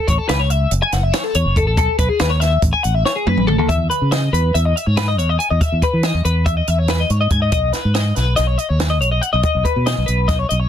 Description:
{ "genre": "math rock and midwest emo", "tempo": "282 BPM (eighths)", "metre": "9/8", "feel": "straight", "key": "E major", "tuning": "A4 = 440 Hz", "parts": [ { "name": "twelve-string electric guitar", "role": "arpeggios", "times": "0.0-10.7 s", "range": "G#4 to G#5", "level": "-19 LUFS", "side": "left 4 dB", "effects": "wide subtle chorus" }, { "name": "fingered electric bass", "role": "bass", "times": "0.1-10.7 s", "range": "F#1 to E3", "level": "-17 LUFS", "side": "equal", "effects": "none" }, { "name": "compact cocktail drum kit", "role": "drums", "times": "0.1-10.6 s", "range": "hi-hat, kick drum, snare drum, toms", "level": "-20 LUFS", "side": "right 1 dB", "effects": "none" } ], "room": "little or no reverb", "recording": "dense, heavily limited modern master", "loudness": "-14 LUFS", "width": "side -9 dB against mid", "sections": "0.0-3.7 A section; 3.7-10.7 B section", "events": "drum fill 3.1-3.7", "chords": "0.0 A; 1.8 B7sus4; 3.7 Emaj7; 7.5 B" }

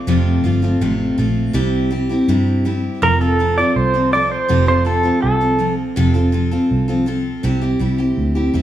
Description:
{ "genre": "honky-tonk and classic country", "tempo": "163 BPM", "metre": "4/4", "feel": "straight", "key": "F major", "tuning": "A4 = 437 Hz", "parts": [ { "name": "picked steel-string acoustic guitar", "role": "accompaniment", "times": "0.0-8.6 s", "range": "F2 to A4", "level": "-18 LUFS", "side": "left 1 dB", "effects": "none" }, { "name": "vintage muted fingered electric bass", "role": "bass", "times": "0.1-8.6 s", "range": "F1 to G2", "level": "-18 LUFS", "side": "right 2 dB", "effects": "none" }, { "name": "pedal steel guitar", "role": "melody", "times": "3.0-5.7 s", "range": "A4 to D5", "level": "-18 LUFS", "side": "right 1 dB", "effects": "none" } ], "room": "light reverb", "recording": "small room ambience", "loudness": "-14 LUFS", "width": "side -12 dB against mid", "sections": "0.0-3.0 A section; 3.0-8.6 B section", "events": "none", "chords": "0.0 F; 1.5 C; 3.0 F; 7.4 C" }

